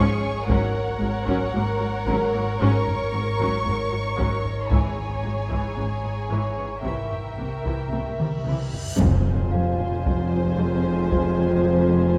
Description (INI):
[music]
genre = cinematic, suspense film score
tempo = 57 BPM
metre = 4/4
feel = straight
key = F minor from 9.0 s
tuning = A4 = 441 Hz
[part]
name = muted studio violin section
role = melody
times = 0.0-12.2 s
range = F#5 to C#6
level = -37 LUFS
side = equal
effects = none
[part]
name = muted symphonic violin section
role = second line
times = 0.0-12.2 s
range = G#4 to E5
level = -32 LUFS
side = equal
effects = none
[part]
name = muted symphonic viola section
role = accompaniment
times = 0.0-12.2 s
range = E3 to F4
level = -35 LUFS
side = equal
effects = none
[part]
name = muted symphonic cello section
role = riff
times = 0.0-12.0 s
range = F2 to C4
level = -32 LUFS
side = equal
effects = none
[part]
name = muted studio cello section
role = bass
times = 0.0-12.2 s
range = F2 to C3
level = -32 LUFS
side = equal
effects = none
[part]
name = muted symphonic double bass section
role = bass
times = 0.0-12.2 s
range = F1 to C2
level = -32 LUFS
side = equal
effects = none
[part]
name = metallic inharmonic drone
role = drone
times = 0.1-12.2 s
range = G#1 to F2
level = -31 LUFS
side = equal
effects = chorus, built-in reverb
[part]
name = worn celesta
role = texture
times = 0.0-12.2 s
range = F5 to C#6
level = -38 LUFS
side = equal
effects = none
[part]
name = taiko ensemble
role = drums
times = 0.5-12.1 s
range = none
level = -30 LUFS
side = equal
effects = none
[part]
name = muted symphonic violin section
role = texture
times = 0.5-8.4 s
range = A#5 to C#6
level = -42 LUFS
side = equal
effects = none
[part]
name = timpani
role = percussion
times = 4.7-10.5 s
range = F2 to G#2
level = -30 LUFS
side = equal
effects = none
[part]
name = reverse cymbal and impact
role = sound effects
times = 8.6-12.2 s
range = none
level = -35 LUFS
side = equal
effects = none
[part]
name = dark trombone section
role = sustained chords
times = 9.0-12.2 s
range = F2 to F3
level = -30 LUFS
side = equal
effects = none
[part]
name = warm French horn section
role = sustained chords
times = 9.0-12.2 s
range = Ab3 to C4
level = -31 LUFS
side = equal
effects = none
[sound]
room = wet concert hall reverb, RT60 2.2 s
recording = none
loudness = -24 LUFS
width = mono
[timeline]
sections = 0.0-9.0 A section; 9.0-12.2 B section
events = drum fill 7.9-9.0; reverse cymbal 8.6-9.0; impact 9.0-12.2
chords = 0.5 F#/G#; 4.7 C#m/G#; 6.8 C7; 9.0 Fm